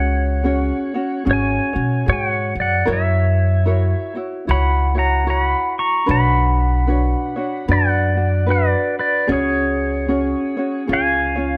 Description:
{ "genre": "Hawaiian", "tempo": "75 BPM", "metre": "4/4", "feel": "swing 60% on 8ths", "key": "unclear", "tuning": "A4 = 440 Hz", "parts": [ { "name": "pedal steel guitar", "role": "melody", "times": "0.0-11.6 s", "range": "G#4 to C#6", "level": "-23 LUFS", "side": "equal", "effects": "none" }, { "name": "ukulele", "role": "accompaniment", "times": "0.0-11.6 s", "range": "C#4 to C#5", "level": "-25 LUFS", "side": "equal", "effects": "none" }, { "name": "upright bass", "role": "bass", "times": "0.0-11.6 s", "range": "G#1 to B2", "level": "-21 LUFS", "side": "equal", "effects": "none" } ], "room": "light reverb", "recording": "none", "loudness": "-18 LUFS", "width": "mono", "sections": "0.0-11.6 A section", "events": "none", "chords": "0.0 C#sus4; 2.9 F#7; 6.1 Bmadd9; 9.3 C#sus4; 10.9 C#" }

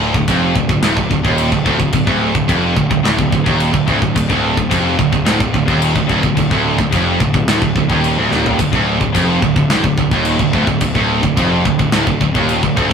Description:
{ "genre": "heavy metal", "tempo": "108 BPM", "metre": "4/4", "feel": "straight", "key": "D minor", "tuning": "A4 = 440 Hz", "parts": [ { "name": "distorted electric guitar", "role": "riff", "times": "0.0-12.9 s", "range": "D2 to F2", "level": "-19 LUFS", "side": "right 1 dB", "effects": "overdrive" }, { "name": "heavy high-gain guitar", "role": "riff", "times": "0.0-12.9 s", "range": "D2 to F2", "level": "-19 LUFS", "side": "right 7 dB", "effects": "distortion" }, { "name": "high-gain distorted guitar", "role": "riff", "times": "0.0-12.9 s", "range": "D2 to F2", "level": "-20 LUFS", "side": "left 6 dB", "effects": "distortion" }, { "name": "fuzz picked electric bass", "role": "bass", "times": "0.0-12.9 s", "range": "D1 to F1", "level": "-20 LUFS", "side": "left 1 dB", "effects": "overdrive" }, { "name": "tight metal drum kit", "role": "drums", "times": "0.1-12.9 s", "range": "crash cymbal, kick drum, snare drum, toms", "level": "-18 LUFS", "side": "left 1 dB", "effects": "none" } ], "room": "wet studio reverb, RT60 0.5 s", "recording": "rough rehearsal-room recording", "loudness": "-12 LUFS", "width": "side -6 dB against mid", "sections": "0.0-12.9 A section", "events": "drum fill 8.3", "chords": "0.0 Dm" }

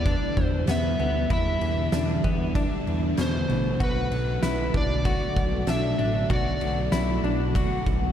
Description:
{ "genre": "dream pop", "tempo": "96 BPM", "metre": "4/4", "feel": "straight", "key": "unclear", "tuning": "A4 = 439 Hz", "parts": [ { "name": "overdriven slide guitar", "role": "melody", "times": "0.0-8.1 s", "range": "B4 to E5", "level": "-31 LUFS", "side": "right 2 dB", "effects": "ping-pong delay, shimmer reverb" }, { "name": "string machine, full ensemble", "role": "sustained chords", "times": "0.0-8.1 s", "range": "B2 to F#4", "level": "-30 LUFS", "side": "right 1 dB", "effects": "ensemble chorus" }, { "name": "semi-hollow electric guitar", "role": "arpeggios", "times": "0.0-8.1 s", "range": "B2 to F#4", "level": "-30 LUFS", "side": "left 4 dB", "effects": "analog chorus, ping-pong delay, shimmer reverb" }, { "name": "fat analog bass", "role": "bass", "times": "0.0-8.1 s", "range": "A1 to E2", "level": "-28 LUFS", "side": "equal", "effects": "none" }, { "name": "oversized low-tuned drum kit", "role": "drums", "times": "0.1-8.0 s", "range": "kick drum, ride cymbal, snare drum, tambourine", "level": "-27 LUFS", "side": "equal", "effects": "none" } ], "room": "moderate concert hall reverb, RT60 2.1 s", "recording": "dark, warm production", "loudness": "-22 LUFS", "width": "side -10 dB against mid", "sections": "0.0-8.1 A section", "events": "none", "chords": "0.0 Em7; 3.8 Bm7" }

